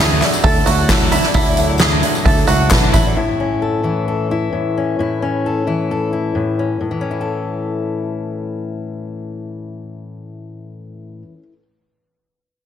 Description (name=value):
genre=indie folk with a building arrangement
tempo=131 BPM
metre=4/4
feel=straight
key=A major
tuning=A4 = 440 Hz
part: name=picked twelve-string acoustic guitar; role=accompaniment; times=0.0-3.2 s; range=D3 to E4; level=-23 LUFS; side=left 6 dB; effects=none
part: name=warm upright piano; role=accompaniment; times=0.0-3.2 s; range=D2 to E5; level=-22 LUFS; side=right 2 dB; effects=none
part: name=bluegrass banjo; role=arpeggios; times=0.0-3.2 s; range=E4 to A4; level=-20 LUFS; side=right 4 dB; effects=tape echo
part: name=picked electric bass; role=bass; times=0.0-3.1 s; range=A1 to D2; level=-19 LUFS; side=equal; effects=none
part: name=tambourine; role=percussion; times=0.1-3.1 s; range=none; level=-30 LUFS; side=left 8 dB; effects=none
part: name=soft-mallet drum kit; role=drums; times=0.2-3.0 s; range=hi-hat, kick drum, snare drum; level=-16 LUFS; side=equal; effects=none
part: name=group handclap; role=percussion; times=0.2-2.8 s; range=none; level=-23 LUFS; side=left 6 dB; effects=none
part: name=fingerpicked steel-string acoustic guitar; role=accompaniment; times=3.2-11.6 s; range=A2 to A4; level=-20 LUFS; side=left 3 dB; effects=none
room=light reverb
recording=dense, heavily limited modern master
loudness=-15 LUFS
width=side -9 dB against mid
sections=0.0-3.2 A section; 3.2-6.8 B section; 6.8-10.5 C section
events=none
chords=0.0 Dadd9; 3.2 A